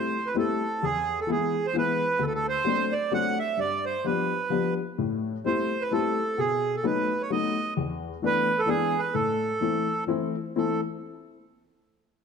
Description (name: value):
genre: musette waltz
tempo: 130 BPM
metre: 3/4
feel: swing 54% on 8ths, rubato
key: A minor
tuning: A4 = 440 Hz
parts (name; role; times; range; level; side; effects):
- accordion; melody; 0.0-10.8 s; G#4 to F#5; -26 LUFS; right 4 dB; none
- dark upright piano; accompaniment; 0.0-10.8 s; D2 to E4; -28 LUFS; left 6 dB; none
room: wet recital hall reverb, RT60 1.8 s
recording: dark, warm production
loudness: -24 LUFS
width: side -6 dB against mid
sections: 0.0-10.6 A section; 10.6-12.0 B section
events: none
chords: 0.0 Am7; 0.8 E; 2.2 D7; 3.6 G7; 5.0 Am7; 6.4 B7; 7.8 E7sus4; 8.7 E7; 9.2 Am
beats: 0.37 | 0.83 1.29 1.75 | 2.21 2.66 3.12 | 3.58 4.05 4.52 | 4.99 5.46 5.93 | 6.39 6.86 7.31 | 7.77 8.23 8.69 | 9.15 9.62 10.09 | 10.56